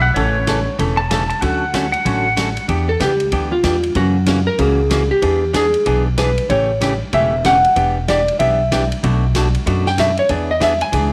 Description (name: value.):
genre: country, western swing.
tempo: 189 BPM.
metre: 4/4.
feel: swing 62% on 8ths.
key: unclear.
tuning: A4 = 443 Hz.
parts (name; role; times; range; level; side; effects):
pedal steel guitar; second line; 0.0-2.7 s; C#5 to A5; -22 LUFS; equal; none.
upright bass; bass; 0.0-11.1 s; E1 to F#2; -22 LUFS; equal; none.
archtop guitar, miked and amplified; accompaniment; 0.2-11.1 s; B2 to A4; -23 LUFS; equal; none.
swinging big-band drum kit; drums; 0.2-11.0 s; hi-hat, kick drum, ride cymbal, snare drum; -28 LUFS; equal; none.
vintage hollow-body jazz guitar; melody; 2.9-11.1 s; F4 to G#5; -19 LUFS; equal; none.
room: moderate plate reverb, RT60 2.3 s.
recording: none.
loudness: -17 LUFS.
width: mono.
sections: 0.0-2.7 A section; 2.7-11.1 A section.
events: pedal steel guitar solo 0.0-2.7; hollow-body jazz guitar solo 2.7-11.1.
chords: 0.2 A; 1.4 Dmaj7; 2.7 Em7; 4.0 F#7; 5.2 E7; 6.5 A7; 7.8 Em7; 9.0 Bm7; 10.3 E7.